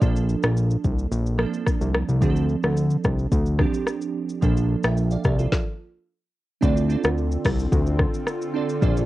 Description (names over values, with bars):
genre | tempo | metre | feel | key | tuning
afrobeats | 109 BPM | 4/4 | straight | D minor | A4 = 440 Hz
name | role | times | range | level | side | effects
glassy digital keys | accompaniment | 0.0-9.1 s | F3 to G5 | -27 LUFS | right 6 dB | chorus
fat analog bass | bass | 0.0-9.1 s | Bb1 to D2 | -22 LUFS | left 1 dB | none
afro-pop drum kit | drums | 0.0-9.1 s | hi-hat, kick drum, rim click, shaker, snare drum | -23 LUFS | left 1 dB | cassette tape
airy breathy pad | sustained chords | 7.0-9.1 s | D3 to A4 | -31 LUFS | left 1 dB | chorus
room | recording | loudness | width
little or no reverb | home recording on cassette, nothing above 10.3 kHz | -20 LUFS | side -16 dB against mid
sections
0.0-6.6 A section; 6.6-9.1 B section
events
stop 5.5-6.6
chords
0.0 Bbmaj7; 2.2 Dm7; 4.4 Bbmaj7; 6.6 Dm7